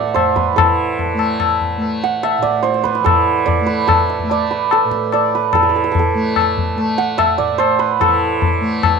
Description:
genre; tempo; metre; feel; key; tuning
indian classical, Hindustani; 145 BPM; 3/4; straight; A raga bhimpalasi; A4 = 440 Hz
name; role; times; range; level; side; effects
santur; melody; 0.0-9.0 s; A4 to F#5; -17 LUFS; right 10 dB; none
tanpura; drone; 0.0-9.0 s; A2 to A3; -23 LUFS; left 2 dB; none
tabla; percussion; 0.2-9.0 s; none; -17 LUFS; left 8 dB; none
room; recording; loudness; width
light reverb, small room ambience; 1960s-style stereo with parts hard left and right; -13 LUFS; side -5 dB against mid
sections
0.0-5.5 A section; 5.5-9.0 B section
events
none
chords
none

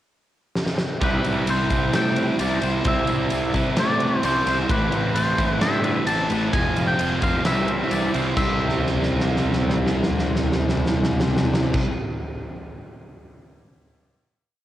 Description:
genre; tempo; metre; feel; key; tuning
rock, shoegaze and dream pop; 131 BPM; 4/4; straight; C major; A4 = 439 Hz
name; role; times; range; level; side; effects
huge arena drum kit; drums; 0.6-11.8 s; crash cymbal, kick drum, ride cymbal, snare drum, toms; -25 LUFS; equal; cassette tape
twangy electric guitar; melody; 1.0-11.8 s; B4 to A5; -26 LUFS; left 1 dB; cassette tape, analog delay
twangy electric guitar; arpeggios; 1.0-11.9 s; G4 to D5; -34 LUFS; left 6 dB; wide subtle chorus, analog delay
biting overdriven guitar; riff; 1.0-11.9 s; A2 to G4; -26 LUFS; right 6 dB; reverse reverb
thick fuzz guitar; riff; 1.0-11.9 s; F2 to C4; -27 LUFS; left 6 dB; distortion, wide subtle chorus
fuzz picked electric bass; bass; 1.0-11.8 s; F1 to A2; -26 LUFS; equal; overdrive, tube saturation
tambourine; percussion; 1.0-11.8 s; none; -46 LUFS; right 9 dB; none
room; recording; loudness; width
light reverb, studio reverb; home recording on cassette; -19 LUFS; side -13 dB against mid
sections
0.0-1.0 pickup bar; 1.0-8.4 A section; 8.4-12.0 final chord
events
drum fill 0.6-1.0, 8.6-11.7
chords
0.0 N.C.; 1.0 Cmaj7; 4.7 Am; 6.5 Fm; 7.5 C

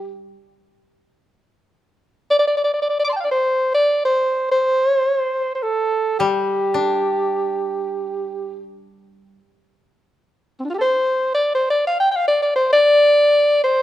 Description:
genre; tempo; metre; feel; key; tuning
japanese traditional, Japanese chamber music; free time; none; none; G suspended pentatonic; A4 = 440 Hz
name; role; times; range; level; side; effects
breathy soprano saxophone; melody; 0.0-13.8 s; C4 to D6; -16 LUFS; equal; none
koto; accompaniment; 0.0-0.3, 6.2-9.4 s; G3 to D4; -24 LUFS; left 5 dB; none
room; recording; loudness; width
light reverb; minimal, uncompressed stereo recording; -16 LUFS; side -13 dB against mid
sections
0.0-13.8 A section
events
none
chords
none

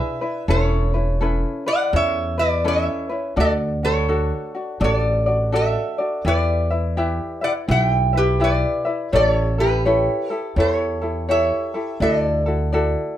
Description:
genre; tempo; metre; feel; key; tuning
Hawaiian; 83 BPM; 4/4; swing 63% on 8ths; D major; A4 = 444 Hz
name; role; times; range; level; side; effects
lap resonator guitar; melody; 0.0-13.2 s; G4 to G5; -22 LUFS; right 1 dB; none
tenor ukulele; accompaniment; 0.0-13.2 s; C#4 to E5; -23 LUFS; left 1 dB; none
upright bass; bass; 0.5-12.9 s; E1 to E2; -22 LUFS; equal; none
room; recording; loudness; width
moderate studio reverb, RT60 0.6 s; dark, warm production; -18 LUFS; side -12 dB against mid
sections
0.0-13.2 A section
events
none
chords
0.5 Aadd9/E; 3.4 D; 6.2 Em; 9.1 A7; 12.0 Dadd9

